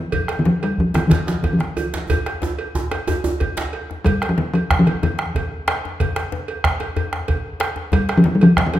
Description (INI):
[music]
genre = west african traditional, West African drum ensemble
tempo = 123 BPM (dotted quarters)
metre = 12/8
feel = straight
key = Eb major pentatonic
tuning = A4 = 440 Hz
[part]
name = talking drum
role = melody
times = 0.0-8.8 s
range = Eb3 to G3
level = -16 LUFS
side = left 1 dB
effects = none
[part]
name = bombo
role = percussion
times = 0.1-8.7 s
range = none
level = -23 LUFS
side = right 2 dB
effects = none
[part]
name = cowbell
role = percussion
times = 0.1-8.8 s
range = none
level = -28 LUFS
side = right 5 dB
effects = none
[part]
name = djembe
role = percussion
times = 0.1-8.8 s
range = none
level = -27 LUFS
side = left 4 dB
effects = none
[part]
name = djembe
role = percussion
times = 0.9-3.7 s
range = none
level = -25 LUFS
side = right 3 dB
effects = none
[sound]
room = moderate recital hall reverb, RT60 1.6 s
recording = minimal, uncompressed stereo recording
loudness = -17 LUFS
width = side -13 dB against mid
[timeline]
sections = 0.0-4.1 A section; 4.1-8.8 B section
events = drum fill 2.1-4.1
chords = none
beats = | 0.13 0.62 1.11 1.60 | 2.10 2.59 3.08 3.56 | 4.05 4.54 5.03 5.51 | 6.00 6.48 6.96 7.45 | 7.93 8.41